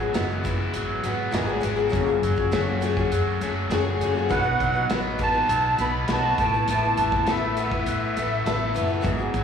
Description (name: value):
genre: folk rock and heartland rock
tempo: 101 BPM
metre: 4/4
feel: straight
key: unclear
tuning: A4 = 440 Hz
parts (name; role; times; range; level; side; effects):
- picked old ladder-braced acoustic guitar; accompaniment; 0.0-9.4 s; G#2 to B4; -27 LUFS; left 6 dB; slapback echo
- overdriven electric guitar; riff; 0.0-9.4 s; F#2 to A4; -29 LUFS; equal; slapback echo
- upright bass; bass; 0.0-9.4 s; F#1 to A2; -28 LUFS; equal; none
- natural country drum kit; drums; 0.1-9.4 s; hi-hat, kick drum, snare drum; -30 LUFS; right 1 dB; none
- musette accordion; melody; 4.3-8.7 s; E5 to B5; -24 LUFS; right 2 dB; slapback echo, tape echo
room: light reverb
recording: live gig heard through the venue's PA, recital hall reverb, small room ambience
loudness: -21 LUFS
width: side -7 dB against mid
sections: 0.0-9.4 A section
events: none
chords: 0.0 Eadd9; 1.9 F#madd9; 4.3 B; 6.4 Asus2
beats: 0.16 0.75 1.34 | 1.94 2.53 3.12 3.72 | 4.31 4.90 5.50 6.09 | 6.68 7.27 7.87 8.46 | 9.05